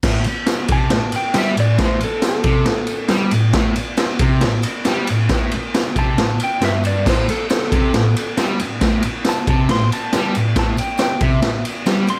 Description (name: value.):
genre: garage rock duo or trio.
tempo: 137 BPM.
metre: 4/4.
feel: straight.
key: A minor.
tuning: A4 = 439 Hz.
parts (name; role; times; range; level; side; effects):
fuzz guitar; riff; 0.0-12.2 s; G2 to G3; -21 LUFS; equal; distortion.
raw garage drum kit; drums; 0.0-12.2 s; crash cymbal, kick drum, ride cymbal, snare drum; -21 LUFS; equal; none.
tambourine; percussion; 0.0-12.2 s; none; -42 LUFS; equal; none.
clean lap steel guitar; melody; 0.7-3.1, 6.0-12.2 s; A4 to C6; -26 LUFS; equal; none.
room: light reverb, small room reverb.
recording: none.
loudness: -18 LUFS.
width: mono.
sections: 0.0-12.2 A section.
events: electric slide guitar solo 0.0-12.2.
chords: 0.0 Am.